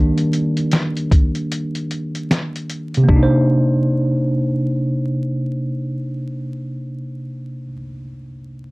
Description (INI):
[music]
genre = lo-fi hip hop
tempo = 76 BPM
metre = 4/4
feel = swing 59% on 16ths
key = C minor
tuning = A4 = 443 Hz
[part]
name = tine electric piano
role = accompaniment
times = 0.0-8.7 s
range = C3 to C5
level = -19 LUFS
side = equal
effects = medium stereo tremolo, cassette tape, low-pass filter
[part]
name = lo-fi sampler-style drum kit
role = drums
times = 0.2-3.3 s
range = hi-hat, kick drum, snare drum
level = -17 LUFS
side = equal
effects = overdrive, vintage 12-bit sampler grit
[sound]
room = light reverb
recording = dark, warm production, vinyl crackle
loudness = -17 LUFS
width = side -23 dB against mid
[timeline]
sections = 0.0-3.1 A section; 3.1-6.2 B section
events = tine electric piano solo 0.0-3.1; break 1.5-3.1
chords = 0.0 Ebmaj7; 3.1 Cm9